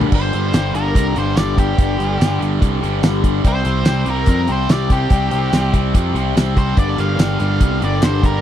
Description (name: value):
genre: classic rock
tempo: 144 BPM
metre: 4/4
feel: straight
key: G minor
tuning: A4 = 441 Hz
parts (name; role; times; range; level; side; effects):
- bright tonewheel organ; sustained chords; 0.0-0.1, 6.8-8.4 s; D4 to Bb4; -31 LUFS; equal; none
- overdriven electric guitar; riff; 0.0-8.4 s; G2 to D4; -23 LUFS; right 17 dB; none
- overdriven electric guitar; riff; 0.0-0.6 s; G2 to D4; -27 LUFS; left 1 dB; none
- raw garage guitar; riff; 0.0-8.4 s; G2 to D4; -22 LUFS; left 14 dB; overdrive, phaser
- picked electric bass; bass; 0.0-8.4 s; G1 to F2; -20 LUFS; equal; none
- damped 70s drum kit; drums; 0.0-8.3 s; crash cymbal, hi-hat, kick drum, snare drum, tambourine, toms; -15 LUFS; equal; none
- octave-fuzz lead guitar; melody; 0.1-8.4 s; G4 to F5; -23 LUFS; equal; distortion, slapback echo
- group handclap; percussion; 7.2-8.1 s; none; -31 LUFS; left 6 dB; none
room: little or no reverb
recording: dry, close 1970s-style studio recording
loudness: -14 LUFS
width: side -11 dB against mid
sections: 0.1-8.4 A section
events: lead electric guitar solo 0.1-8.4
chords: 0.1 G5; 3.4 C5; 6.8 Gm